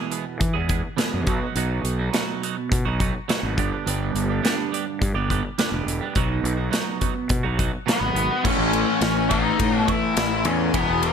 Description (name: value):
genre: quiet-loud alternative rock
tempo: 104 BPM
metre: 4/4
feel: straight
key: unclear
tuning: A4 = 441 Hz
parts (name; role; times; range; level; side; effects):
- twelve-string electric guitar; arpeggios; 0.0-11.1 s; E2 to G#4; -27 LUFS; right 8 dB; phaser
- big rock drum kit; drums; 0.1-11.1 s; crash cymbal, hi-hat, kick drum, ride cymbal, snare drum; -25 LUFS; equal; none
- fuzz fingered electric bass; bass; 0.4-11.1 s; E1 to E3; -26 LUFS; left 1 dB; overdrive
- octave-fuzz lead guitar; melody; 7.9-11.1 s; B3 to E5; -23 LUFS; left 1 dB; distortion, digital delay
- raw garage guitar; riff; 8.4-11.1 s; E2 to A3; -24 LUFS; left 14 dB; overdrive, phaser
room: light reverb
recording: none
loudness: -20 LUFS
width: side -7 dB against mid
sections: 0.0-8.4 A section; 8.4-11.1 B section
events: none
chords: 0.0 E; 1.3 B; 3.6 G; 6.2 B; 8.4 A